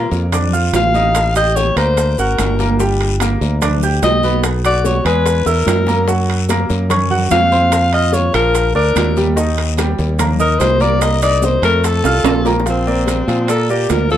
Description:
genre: Afro-Cuban jazz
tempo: 146 BPM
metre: 4/4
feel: straight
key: Bb major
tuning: A4 = 440 Hz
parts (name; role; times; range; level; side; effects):
- warm alto saxophone; melody; 0.0-14.2 s; C4 to F5; -16 LUFS; left 2 dB; plate reverb
- warm concert grand piano; accompaniment; 0.0-14.2 s; Eb3 to G6; -20 LUFS; right 2 dB; none
- fingered electric bass; bass; 0.0-14.2 s; G1 to Bb2; -17 LUFS; equal; none
- bongos; percussion; 0.1-14.1 s; none; -26 LUFS; left 6 dB; none
- congas; percussion; 0.1-14.2 s; none; -25 LUFS; right 3 dB; none
- guiro; percussion; 0.1-14.2 s; none; -31 LUFS; left 9 dB; none
- maracas; percussion; 0.1-14.2 s; none; -30 LUFS; right 8 dB; none
- timbales; percussion; 0.3-14.1 s; none; -22 LUFS; right 7 dB; none
room: light reverb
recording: none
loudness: -12 LUFS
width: side -11 dB against mid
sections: 0.0-12.7 A section; 12.7-14.2 B section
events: alto saxophone solo 0.0-12.7; drum fill 5.5-6.1, 12.0-12.7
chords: 0.0 Bb; 1.1 Cm13/A; 2.0 Daug; 2.8 Gm; 4.4 B5; 5.3 Eadd9; 6.1 Gbmaj7#11; 7.7 F5; 8.6 Bb6; 9.4 Eb; 11.0 Cm7; 11.8 F; 12.7 Bbadd9

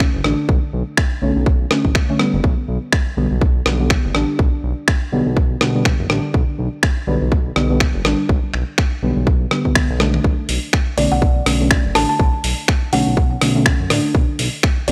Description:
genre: deep house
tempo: 123 BPM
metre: 4/4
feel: swing 57% on 16ths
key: B minor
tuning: A4 = 440 Hz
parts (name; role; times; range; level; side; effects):
- deep mellow chord stab; stabs; 0.0-14.9 s; D3 to D4; -24 LUFS; equal; chorus, sidechain pumping, tape echo
- smooth synth bass; bass; 0.0-14.9 s; F#1 to B1; -23 LUFS; equal; tube saturation, sidechain pumping
- dusty soul sampler-style drum kit; drums; 0.0-14.9 s; finger snaps, hi-hat, rim click, toms; -23 LUFS; equal; small room ambience
- electronic kick drum; drums; 0.0-14.7 s; none; -19 LUFS; equal; small room ambience
- kalimba; melody; 11.0-14.9 s; D5 to A5; -25 LUFS; equal; tape echo
room: digital ambience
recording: dry, gritty hardware recording, transformer saturation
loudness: -17 LUFS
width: mono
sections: 0.0-14.9 A section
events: drum fill 10.0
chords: 0.0 Bm9; 2.4 G; 10.2 Bm9

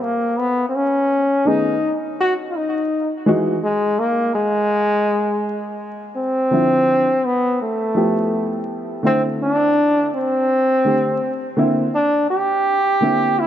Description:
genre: hip hop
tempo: 83 BPM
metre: 4/4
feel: swing 60% on 16ths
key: unclear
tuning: A4 = 441 Hz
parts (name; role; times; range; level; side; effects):
- bright trombone; melody; 0.0-13.5 s; G#3 to G4; -17 LUFS; equal; analog delay
- dark upright piano; accompaniment; 1.4-13.5 s; D3 to G#4; -20 LUFS; equal; none
room: moderate plate reverb, RT60 3.5 s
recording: dark, warm production, vinyl crackle, nothing above 7.8 kHz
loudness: -16 LUFS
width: side -10 dB against mid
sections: 0.0-13.5 A section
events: none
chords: 0.4 B13; 3.3 Emaj9; 6.2 Dm9; 7.6 G13; 9.0 C69; 11.9 C9

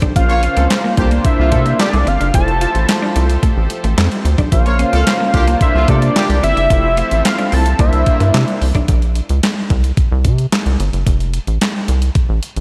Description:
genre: early-eighties boogie funk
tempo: 110 BPM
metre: 4/4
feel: straight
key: F major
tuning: A4 = 440 Hz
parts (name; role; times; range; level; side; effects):
- brassy analog pad; sustained chords; 0.0-8.9 s; C3 to E5; -30 LUFS; equal; none
- clean electric guitar; riff; 0.0-8.9 s; A3 to F4; -28 LUFS; equal; lush chorus, slapback echo
- rubbery square bass; bass; 0.0-12.6 s; F1 to C3; -17 LUFS; equal; none
- clean 12-bit digital drum machine; drums; 0.0-12.6 s; handclaps, hi-hat, kick drum, snare drum; -19 LUFS; equal; none
- fat analog lead; melody; 0.2-8.6 s; D5 to A5; -21 LUFS; equal; chorus, slapback echo
- mellow synth brass; accompaniment; 0.2-8.7 s; A3 to C5; -25 LUFS; equal; chorus, slapback echo
- clear horn section; second line; 0.3-6.4 s; D3 to Db5; -27 LUFS; equal; slapback echo, analog delay
room: light reverb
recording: none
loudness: -14 LUFS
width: mono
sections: 0.0-8.9 A section; 8.9-12.6 B section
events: none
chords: 0.2 Bbmadd9; 1.0 C9sus4; 2.3 Fmaj7; 4.5 Bbmadd9; 5.3 C9sus4; 6.7 Fmaj7; 7.8 C9; 8.9 Bbm; 9.7 C5; 11.1 F

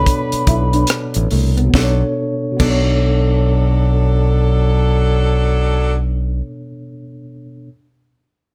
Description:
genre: R&B, neo-soul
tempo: 70 BPM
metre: 4/4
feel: swing 62% on 16ths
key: B minor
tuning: A4 = 442 Hz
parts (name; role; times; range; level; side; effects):
- expressive portamento lead; melody; 0.0-0.9 s; B5; -23 LUFS; equal; chorus, slapback echo
- mellow tine electric piano; accompaniment; 0.0-7.7 s; B2 to C#5; -24 LUFS; equal; plate reverb
- bright saxophone section; stabs; 0.0-5.9 s; F#3 to B4; -25 LUFS; equal; none
- modern bright fingered electric bass; bass; 0.0-6.4 s; A1 to C2; -17 LUFS; equal; none
- mellow electric guitar; second line; 0.1-2.8 s; A3 to E4; -25 LUFS; equal; plate reverb
- tight funk drum kit; drums; 0.1-2.9 s; crash cymbal, hi-hat, kick drum, rim click, snare drum; -21 LUFS; equal; none
room: little or no reverb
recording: none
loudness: -16 LUFS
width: mono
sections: 0.0-1.7 A section; 1.7-5.2 B section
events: slowing down 0.0-1.7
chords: 0.0 Bm7

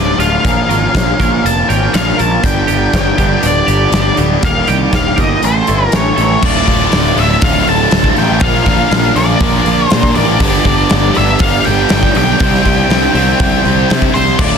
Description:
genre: quiet-loud alternative rock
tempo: 120 BPM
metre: 4/4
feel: straight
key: D minor from 6.4 s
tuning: A4 = 440 Hz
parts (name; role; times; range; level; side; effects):
- octave-fuzz lead guitar; melody; 0.0-14.6 s; C5 to A5; -16 LUFS; equal; distortion, digital delay
- twangy electric guitar; arpeggios; 0.0-6.4 s; A2 to Bb4; -22 LUFS; right 8 dB; lush chorus, digital delay
- heavy high-gain guitar; riff; 0.0-14.6 s; D2 to C5; -19 LUFS; left 13 dB; distortion
- overdriven semi-hollow guitar; riff; 0.0-14.6 s; D2 to C5; -20 LUFS; right 14 dB; phaser
- fuzz picked electric bass; bass; 0.0-14.6 s; D1 to C3; -16 LUFS; equal; overdrive
- big rock drum kit; drums; 0.2-14.5 s; crash cymbal, hi-hat, kick drum, snare drum; -15 LUFS; left 1 dB; none
- scooped high-gain guitar; riff; 6.4-14.6 s; D2 to C4; -19 LUFS; left 1 dB; distortion
room: light reverb, small room reverb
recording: dense, heavily limited modern master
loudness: -9 LUFS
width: side -6 dB against mid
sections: 0.0-6.4 A section; 6.4-14.6 B section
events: lead electric guitar solo 0.0-6.4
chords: 0.4 Bbm; 2.4 G; 4.4 Eb; 5.4 A7; 6.4 Dm; 8.4 Bb; 10.4 G; 12.4 C

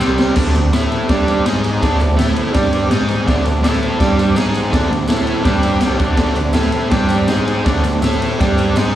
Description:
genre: garage rock duo or trio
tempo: 165 BPM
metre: 4/4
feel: straight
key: D mixolydian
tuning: A4 = 440 Hz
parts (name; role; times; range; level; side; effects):
- overdriven combo organ; sustained chords; 0.0-9.0 s; D4 to G5; -26 LUFS; equal; none
- fuzz guitar; riff; 0.0-9.0 s; C3 to A4; -17 LUFS; right 1 dB; distortion, slapback echo
- growling picked electric bass; bass; 0.0-9.0 s; C2 to A2; -20 LUFS; right 1 dB; overdrive
- raw garage drum kit; drums; 0.0-8.9 s; crash cymbal, kick drum, ride cymbal, snare drum; -17 LUFS; equal; none
- tambourine; percussion; 0.0-8.9 s; none; -39 LUFS; left 1 dB; none
room: light reverb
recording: live gig heard through the venue's PA, recital hall reverb, small room ambience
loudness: -13 LUFS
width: side -12 dB against mid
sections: 0.4-9.0 A section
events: drum fill 0.0-0.4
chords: 0.0 C5; 0.4 D; 0.7 A5; 1.1 G5; 1.5 G#5; 1.8 D; 2.2 A5; 2.5 G5; 2.9 G#5; 3.3 D; 3.6 A5; 4.0 G5; 4.4 G#5; 4.7 D; 5.1 A5; 5.5 G5; 5.8 D; 6.6 A5; 6.9 G5; 7.3 G#5; 7.7 D; 8.0 A5; 8.4 G5

